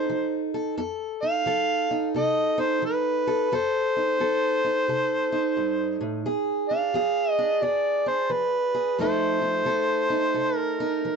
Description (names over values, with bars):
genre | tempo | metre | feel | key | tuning
acoustic country blues, solo or duo | 88 BPM | 4/4 | swing 64% on 8ths | F mixolydian | A4 = 440 Hz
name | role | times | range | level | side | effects
overdriven harmonica | melody | 0.0-11.2 s | B4 to F5 | -24 LUFS | equal | plate reverb
fingerpicked steel-string acoustic guitar | accompaniment | 0.0-11.2 s | F2 to A4 | -26 LUFS | right 1 dB | none
room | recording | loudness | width
moderate small room reverb, RT60 0.5 s | dark, warm production, nothing above 7.7 kHz | -22 LUFS | side -5 dB against mid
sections
0.0-11.2 A section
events
none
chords
0.0 F7; 6.2 Bb7; 9.0 F7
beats
0.09 | 0.77 1.46 2.14 2.82 | 3.50 4.19 4.87 5.55 | 6.24 6.92 7.61 8.29 | 8.97 9.66 10.35 11.03